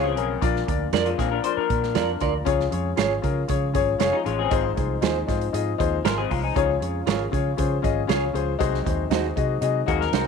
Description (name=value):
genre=uptempo 1960s-style soul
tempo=117 BPM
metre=4/4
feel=straight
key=Ab mixolydian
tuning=A4 = 440 Hz
part: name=warm grand piano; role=accompaniment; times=0.0-10.1 s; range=Ab2 to C6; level=-25 LUFS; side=left 13 dB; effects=none
part: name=mellow tonewheel organ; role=sustained chords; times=0.0-10.3 s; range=Db3 to F4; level=-34 LUFS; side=right 2 dB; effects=slow rotary speaker
part: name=electric guitar through a small old amp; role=riff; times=0.0-6.7, 9.9-10.3 s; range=Ab3 to C5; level=-27 LUFS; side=left 13 dB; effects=lush chorus
part: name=electric guitar through a small old amp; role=stabs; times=0.0-10.3 s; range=Eb4 to D5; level=-26 LUFS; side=right 13 dB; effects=wide subtle chorus
part: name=vintage muted fingered electric bass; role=bass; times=0.0-10.3 s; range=F1 to Db3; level=-28 LUFS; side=right 1 dB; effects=none
part: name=natural country drum kit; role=drums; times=0.2-10.3 s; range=hi-hat, kick drum, snare drum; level=-28 LUFS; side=right 5 dB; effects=none
room=light reverb, small room ambience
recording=1960s-style stereo with parts hard left and right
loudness=-21 LUFS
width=side -6 dB against mid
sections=0.0-10.3 A section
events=none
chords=0.4 Bb; 2.5 Db; 4.5 Ab6; 6.6 Db; 8.6 Ab7/C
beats=| 0.42 0.94 1.45 1.96 | 2.47 2.98 3.49 4.00 | 4.52 5.03 5.54 6.05 | 6.56 7.07 7.58 8.09 | 8.60 9.12 9.62 10.14